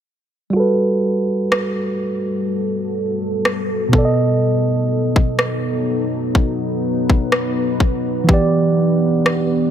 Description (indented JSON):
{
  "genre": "contemporary R&B",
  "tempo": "62 BPM",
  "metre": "4/4",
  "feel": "swing 54% on 16ths",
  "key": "G major",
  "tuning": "A4 = 440 Hz",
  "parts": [
    { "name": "mellow tine electric piano", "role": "accompaniment", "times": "0.5-9.7 s", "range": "B2 to D#5", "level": "-18 LUFS", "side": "right 2 dB", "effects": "low-pass filter" },
    { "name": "deep dark ambient pad", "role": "sustained chords", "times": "1.8-9.7 s", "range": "E3 to B4", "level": "-22 LUFS", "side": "left 2 dB", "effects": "chorus, built-in reverb, low-pass filter" },
    { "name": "trap drum kit", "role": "drums", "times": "1.5-9.5 s", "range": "kick drum, rim click", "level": "-18 LUFS", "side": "left 1 dB", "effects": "none" }
  ],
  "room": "light reverb",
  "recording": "none",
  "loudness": "-16 LUFS",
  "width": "side -9 dB against mid",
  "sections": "0.5-9.7 A section",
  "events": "none",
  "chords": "0.5 Gmaj9; 3.9 B7; 8.3 Em7"
}